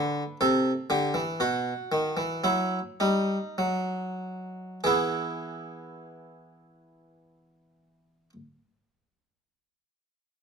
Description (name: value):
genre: classical, baroque-style two-part invention for harpsichord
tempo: 45-65 BPM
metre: 3/4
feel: straight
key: unclear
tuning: A4 = 439 Hz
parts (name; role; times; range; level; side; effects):
- harpsichord; solo; 0.0-8.3 s; B2 to B4; -26 LUFS; right 1 dB; none
room: light reverb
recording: dark, warm production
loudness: -25 LUFS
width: side -6 dB against mid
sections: 0.0-4.8 A section; 4.8-8.8 B section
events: slowing down 0.0-4.8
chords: 0.4 Am/C; 1.4 B (rootless); 4.8 E